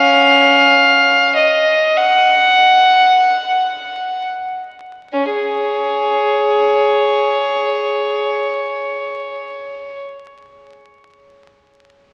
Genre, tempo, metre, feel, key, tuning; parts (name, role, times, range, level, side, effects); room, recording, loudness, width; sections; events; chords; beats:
classical, free, expressive piece for unaccompanied violin; free time; Db major; A4 = 441 Hz
warm violin; solo; 0.0-10.0 s; Db4 to Gb5; -14 LUFS; equal
wet cathedral reverb, RT60 4.6 s; very old 78 rpm record, vinyl crackle; -14 LUFS; mono
0.0-5.1 A section; 5.1-11.0 B section
slowing down 0.0-5.1
free time